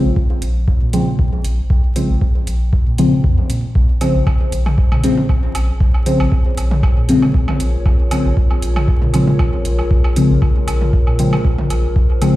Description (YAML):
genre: dub techno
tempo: 117 BPM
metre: 4/4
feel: swing 54% on 16ths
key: Bb minor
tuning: A4 = 441 Hz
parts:
  - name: deep mellow chord stab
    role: stabs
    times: 0.0-12.3 s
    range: Db3 to C4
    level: -18 LUFS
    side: left 1 dB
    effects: chorus, phaser, dub echo
  - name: soft dub sub bass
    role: bass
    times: 0.0-12.0 s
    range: Bb1 to Bb2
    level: -18 LUFS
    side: equal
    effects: tube saturation, sidechain pumping
  - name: electronic kick drum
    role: drums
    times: 0.2-12.1 s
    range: none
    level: -15 LUFS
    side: equal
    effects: overdrive
  - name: electronic hi-hat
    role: drums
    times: 0.4-12.3 s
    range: none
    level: -31 LUFS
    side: right 3 dB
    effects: overdrive
  - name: dark analog pad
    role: sustained chords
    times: 3.8-12.4 s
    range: F4 to Db5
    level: -26 LUFS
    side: left 1 dB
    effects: wide subtle chorus, sidechain pumping
  - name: electronic woodblock and toms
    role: percussion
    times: 4.0-12.3 s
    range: none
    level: -25 LUFS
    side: right 1 dB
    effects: sidechain pumping on perc, sidechain pumping on toms, dub echo
room: light reverb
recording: played on a big sound system in a bare room, large studio reverb, vinyl crackle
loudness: -13 LUFS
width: side -16 dB against mid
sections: 0.0-12.4 A section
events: none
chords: 0.0 Bbm7